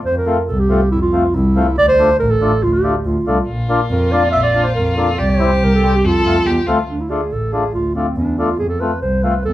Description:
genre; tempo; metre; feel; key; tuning
klezmer; 141 BPM; 2/4; straight; F major; A4 = 440 Hz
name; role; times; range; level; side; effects
warm double bass; bass; 0.0-9.5 s; A1 to F2; -18 LUFS; equal; none
dark clarinet; melody; 0.1-9.5 s; C4 to F5; -17 LUFS; right 2 dB; none
mellow accordion; accompaniment; 0.3-9.3 s; G3 to G4; -19 LUFS; left 3 dB; none
rich violin; second line; 3.5-6.9 s; F4 to A4; -23 LUFS; left 2 dB; none
room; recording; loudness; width
wet small room ambience, RT60 0.5 s; heard from further back in the room; -13 LUFS; side -14 dB against mid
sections
0.1-6.9 A section; 6.9-9.5 B section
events
none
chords
0.1 F; 1.8 Dm; 3.5 Bb; 5.2 C; 6.0 F; 6.9 Dm; 8.6 F

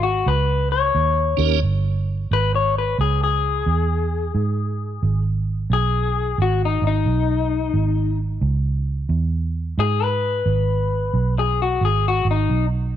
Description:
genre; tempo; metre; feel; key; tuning
blues; 88 BPM; 4/4; swing 64% on 8ths; G# minor; A4 = 439 Hz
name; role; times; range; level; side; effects
electric guitar through a small old amp; melody; 0.0-12.6 s; D#4 to C#5; -22 LUFS; left 7 dB; none
vintage muted fingered electric bass; bass; 0.0-13.0 s; G1 to G#2; -20 LUFS; right 2 dB; none
tonewheel organ; accompaniment; 1.4-1.6 s; A#3 to A#4; -24 LUFS; right 17 dB; overdrive, chorus vibrato, slow rotary speaker
room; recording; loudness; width
little or no reverb; 1960s-style stereo with parts hard left and right, nothing above 10.4 kHz; -18 LUFS; side -10 dB against mid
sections
0.0-2.3 A section; 2.3-13.0 B section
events
clean electric guitar solo 2.3-13.0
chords
0.0 G#madd11; 0.9 D#7; 2.3 G#m

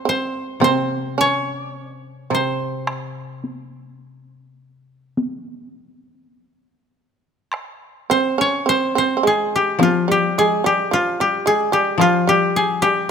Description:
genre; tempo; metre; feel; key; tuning
japanese traditional, Japanese chamber music; 49-56 BPM; 4/4; rubato; C miyako bushi; A4 = 444 Hz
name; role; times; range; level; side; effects
koto; melody; 0.0-13.1 s; F4 to Ab5; -19 LUFS; left 3 dB; none
koto; accompaniment; 0.0-13.1 s; C3 to G3; -24 LUFS; left 10 dB; none
shamisen; second line; 0.1-13.1 s; F3 to Db4; -21 LUFS; right 6 dB; none
taiko ensemble; percussion; 0.6-12.3 s; none; -25 LUFS; left 1 dB; none
room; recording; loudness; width
moderate concert hall reverb, RT60 2.1 s; close, detailed microphones; -16 LUFS; side -7 dB against mid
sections
0.0-7.5 A section; 7.5-13.1 B section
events
none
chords
none

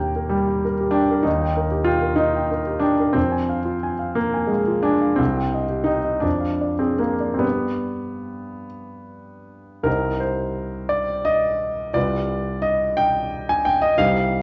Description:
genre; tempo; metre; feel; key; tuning
classical, romantic character piece for solo piano; 47-66 BPM (dotted quarters); 6/8; rubato; C minor; A4 = 440 Hz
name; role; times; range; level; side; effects
warm grand piano; solo; 0.0-14.4 s; C2 to Ab5; -22 LUFS; equal; none
room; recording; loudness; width
moderate recital hall reverb, RT60 1.3 s; worn, warbling old tape, cassette tape, warbly pitch drift, nothing above 7.8 kHz; -21 LUFS; mono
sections
0.0-9.9 A section; 9.9-14.4 B section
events
none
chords
0.0 Eb; 3.2 Fm; 5.2 Cm; 6.2 Ddim/F; 7.4 G; 9.9 Cm; 12.0 G7/C

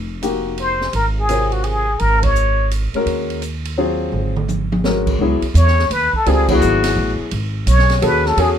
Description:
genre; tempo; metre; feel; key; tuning
modal jazz; 169 BPM; 3/4; swing 65% on 8ths; C# minor from 5.2 s; A4 = 440 Hz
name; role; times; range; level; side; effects
upright bass; bass; 0.0-8.6 s; F1 to E2; -18 LUFS; right 1 dB; none
clear grand piano; accompaniment; 0.2-8.6 s; C3 to Db5; -19 LUFS; left 3 dB; none
open jazz drum kit; drums; 0.2-8.5 s; crash cymbal, hi-hat, kick drum, ride cymbal, snare drum, toms; -25 LUFS; right 3 dB; none
trumpet with plunger mute; melody; 0.6-2.7, 5.6-8.5 s; F#4 to C#5; -18 LUFS; left 2 dB; none
room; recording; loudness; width
light reverb; minimal, uncompressed stereo recording; -15 LUFS; side -9 dB against mid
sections
0.0-5.2 A section; 5.2-8.6 B section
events
band accent 2.2, 6.4; drum fill 4.1-4.8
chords
0.0 F9sus4; 0.9 Ab9sus4; 5.2 C#m11

